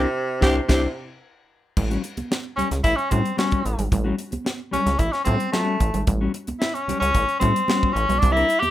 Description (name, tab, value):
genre	funk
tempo	111 BPM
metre	4/4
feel	straight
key	A mixolydian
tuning	A4 = 438 Hz
part	clear tenor saxophone	melody	0.0-8.7 s	C3 to G4	-22 LUFS	equal	none
part	mellow electric guitar	accompaniment	0.0-8.7 s	G3 to C5	-27 LUFS	left 4 dB	spring reverb
part	rubbery square bass	bass	0.0-8.7 s	G#1 to A2	-24 LUFS	equal	none
part	growling tenor saxophone	second line	0.4-0.8 s	G4	-26 LUFS	right 1 dB	none
part	tight funk drum kit	drums	0.4-8.7 s	crash cymbal, hi-hat, kick drum, snare drum	-24 LUFS	equal	none
part	congas	percussion	1.8-8.7 s	none	-31 LUFS	right 4 dB	none
room	moderate studio reverb, RT60 0.5 s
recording	rough home demo mix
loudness	-20 LUFS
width	side -13 dB against mid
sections	0.0-1.8 A section; 1.8-8.7 B section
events	band accent 0.0-1.8; tenor saxophone solo 1.8-8.7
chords	0.0 Cadd9; 1.8 A13